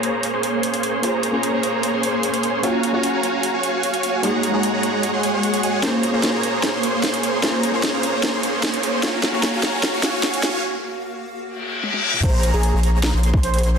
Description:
future bass; 150 BPM; 4/4; half-time; Bb minor; A4 = 440 Hz
shimmering ambient pad; sustained chords; 0.4-12.2 s; Bb3 to C6; -29 LUFS; right 2 dB; chorus, built-in reverb, sidechain pumping
supersaw chords; riff; 0.0-13.8 s; Ab3 to Db6; -21 LUFS; right 1 dB; wide subtle chorus, sidechain pumping, low-pass filter, digital delay
trap drum kit; drums; 0.0-13.7 s; crash cymbal, hi-hat, snare drum, toms; -24 LUFS; right 1 dB; soft clipping on snare, studio reverb
soft round pluck; accompaniment; 1.0-9.5 s; Bb3 to C6; -26 LUFS; left 1 dB; chorus, cassette tape, sidechain pumping, digital delay
riser and reverse cymbal; sound effects; 7.2-12.2 s; -27 LUFS; left 3 dB
warm velvety synth lead; melody; 12.2-13.8 s; Ab4 to C5; -26 LUFS; right 2 dB; chorus, sidechain pumping, tape echo
airy dreamy lead; arpeggios; 12.2-13.8 s; Bb5 to C6; -31 LUFS; right 1 dB; chorus, sidechain pumping, digital delay
saturated sub bass; bass; 12.2-13.8 s; Bb1; -18 LUFS; equal; sidechain pumping
electronic kick drum; drums; 12.2-13.4 s; -18 LUFS; equal; studio reverb
wet digital room reverb, RT60 1.1 s; dense, heavily limited modern master, high-pass filter; -18 LUFS; side -6 dB against mid
0.0-12.2 A section; 12.2-13.8 B section
build-up 0.0-12.2; filter sweep 0.0-12.2; drum fill 5.8-10.6, 11.8-12.2; riser 7.2-10.6; break 10.6-12.2; reverse cymbal 11.6-12.2; drop 12.2-13.8
0.0 Bbm9; 2.6 Gbmaj7; 4.2 Ab9sus4; 5.8 Bbm9; 9.0 Gbmaj7; 10.6 Ab9sus4; 12.2 Bbm9

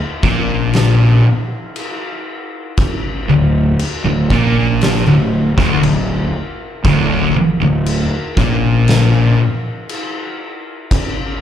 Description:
stoner and doom metal; 59 BPM; 4/4; straight; A4 = 440 Hz
thick fuzz guitar; riff; 0.2-9.4 s; D2 to Bb2; -17 LUFS; left 8 dB; distortion
thick fuzz guitar; riff; 0.2-9.4 s; D2 to Bb2; -16 LUFS; right 4 dB; distortion, slapback echo
fuzz fingered electric bass; bass; 0.2-9.3 s; D1 to Bb1; -18 LUFS; equal; overdrive
oversized low-tuned drum kit; drums; 0.2-11.1 s; crash cymbal, kick drum, snare drum; -20 LUFS; equal
light reverb; live gig heard through the venue's PA, club reverb; -12 LUFS; side -10 dB against mid
0.0-11.4 A section
0.0 Bb/D

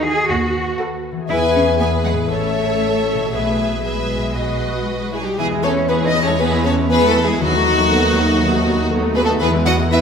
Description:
cinematic, playful, whimsical film cue; 119 BPM; 4/4; straight; E major; A4 = 440 Hz
clear studio violin section; melody; 0.0-10.0 s; D#4 to G#5; -26 LUFS; left 1 dB
clear studio violin section; second line; 0.0-10.0 s; F#4 to F#5; -21 LUFS; left 2 dB
rich studio viola section; accompaniment; 0.0-10.0 s; E3 to A4; -23 LUFS; equal
concert harp; arpeggios; 0.0-10.0 s; A2 to E5; -23 LUFS; left 8 dB
rich studio cello section; bass; 0.0-10.0 s; F#3 to G#4; -23 LUFS; right 2 dB
rich studio double bass section; bass; 0.3-10.0 s; A1 to E2; -22 LUFS; right 3 dB
concert flute; second line; 5.1-10.0 s; F#4 to F#5; -23 LUFS; equal
dark French horn section; sustained chords; 5.9-10.0 s; B3 to B4; -27 LUFS; equal
wet scoring stage reverb, RT60 1.9 s; minimal, uncompressed stereo recording; -15 LUFS; side -6 dB against mid
0.0-5.4 A section; 5.4-10.0 B section
0.0 B7/D#; 1.3 E; 2.3 A; 3.3 E/B; 4.4 B; 5.4 E; 7.4 B7/D#; 9.4 E

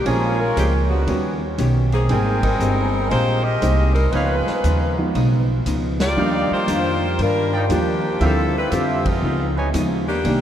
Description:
jazz, big band swing; 118 BPM; 4/4; swing 67% on 8ths; A4 = 440 Hz
clear saxophone section; melody; 0.0-10.4 s; Db3 to Eb5; -22 LUFS; left 1 dB
upright bass; bass; 0.0-10.4 s; G1 to G2; -21 LUFS; right 1 dB
archtop guitar, miked and amplified; accompaniment; 0.1-10.4 s; Bb2 to Bb4; -25 LUFS; left 3 dB
warm concert grand piano; accompaniment; 0.1-10.4 s; Eb3 to D5; -27 LUFS; right 2 dB
mellow trumpet section; stabs; 0.1-9.7 s; Eb4 to Ab5; -27 LUFS; right 2 dB
vintage drum kit; drums; 0.1-10.4 s; hi-hat, kick drum, ride cymbal, snare drum; -31 LUFS; equal
wet cathedral reverb, RT60 6.4 s; in a vast, echoing space; -17 LUFS; side -10 dB against mid
0.0-10.4 A section
band accent 2.3, 5.9, 9.0
0.1 Bbm7; 1.1 Eb7alt; 2.1 Abmaj9; 4.1 Db9; 6.2 Ebmaj9; 8.2 Dm11; 9.2 Db9

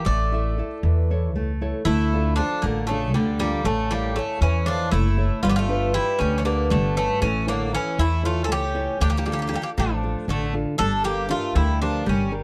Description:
greek folk, Greek bouzouki band; 235 BPM (eighths); 7/8; straight; D harmonic minor; A4 = 440 Hz
Greek bouzouki; melody; 0.0-12.3 s; G3 to D5; -29 LUFS; equal
Greek bouzouki; second line; 0.0-12.3 s; C#3 to D4; -34 LUFS; equal
nylon-string guitar; accompaniment; 0.0-12.4 s; D3 to E5; -29 LUFS; equal
upright bass; bass; 0.1-12.4 s; F#1 to E2; -26 LUFS; equal
light reverb; dark, warm production; -23 LUFS; mono
0.0-1.9 A section; 1.9-12.4 A section
0.1 A; 1.9 Dm; 3.6 A; 5.4 G; 7.2 A; 9.0 Dm; 10.8 Gm

